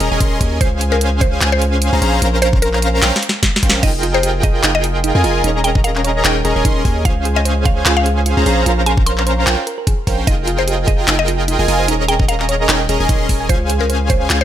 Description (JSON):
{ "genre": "future bass", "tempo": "149 BPM", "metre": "4/4", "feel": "swing 55% on 16ths, half-time", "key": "unclear", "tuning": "A4 = 440 Hz", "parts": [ { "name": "big bright polysynth", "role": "riff", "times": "0.0-14.4 s", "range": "Db4 to C6", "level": "-18 LUFS", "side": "equal", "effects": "sidechain pumping" }, { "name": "long sustained 808-style bass", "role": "bass", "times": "0.0-14.4 s", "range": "Eb1 to F2", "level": "-18 LUFS", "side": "equal", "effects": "sidechain pumping" }, { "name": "trap drum kit", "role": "drums", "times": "0.0-14.4 s", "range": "crash cymbal, handclaps, hi-hat, snare drum", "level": "-18 LUFS", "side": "equal", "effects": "studio reverb" }, { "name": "electronic kick drum", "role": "drums", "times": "0.2-14.2 s", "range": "none", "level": "-16 LUFS", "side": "equal", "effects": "studio reverb" }, { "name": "mallet-like synth pluck", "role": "melody", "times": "0.6-14.4 s", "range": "Bb4 to C6", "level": "-21 LUFS", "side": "left 1 dB", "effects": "chorus, sidechain pumping, dub echo" }, { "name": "thumb-piano-like synth pluck", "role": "arpeggios", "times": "3.8-14.4 s", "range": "Eb4 to Ab5", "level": "-25 LUFS", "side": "right 5 dB", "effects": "chorus, cassette tape, sidechain pumping, dub echo" } ], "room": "light reverb, digital ambience", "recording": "none", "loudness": "-13 LUFS", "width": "side -11 dB against mid", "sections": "0.0-14.4 A section", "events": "drum fill 3.0-3.8", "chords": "0.0 Eb7sus4; 0.6 Dbmaj7; 2.2 Bbmadd9; 3.8 Fm11; 5.4 Eb7sus4; 7.1 Dbmaj7; 8.7 Bbmadd9; 10.3 Fm11; 11.9 Eb7sus4; 13.5 Dbmaj7", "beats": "0.21 | 0.61 1.01 1.41 1.82 | 2.22 2.62 3.02 3.43 | 3.83 4.23 4.64 5.04 | 5.44 5.84 6.25 6.65 | 7.05 7.45 7.86 8.26 | 8.66 9.06 9.47 9.87 | 10.27 10.68 11.08 11.48 | 11.88 12.29 12.69 13.09 | 13.49 13.90 14.30" }